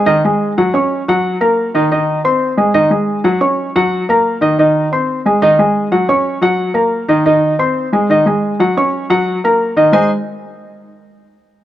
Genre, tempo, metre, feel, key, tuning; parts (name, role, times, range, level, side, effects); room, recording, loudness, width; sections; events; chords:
latin; 179 BPM; 4/4; straight; Ab major; A4 = 435 Hz
dark grand piano; accompaniment; 0.0-10.1 s; Eb3 to Db6; -11 LUFS; equal
light reverb; -11 LUFS; side -12 dB against mid
0.0-9.9 A section; 9.9-11.3 B section
0.0 Ab5; 0.6 Gb; 1.9 Ab; 3.2 Gb; 4.6 Ab; 5.9 Gb; 7.3 Ab; 8.6 Gb; 9.9 Ab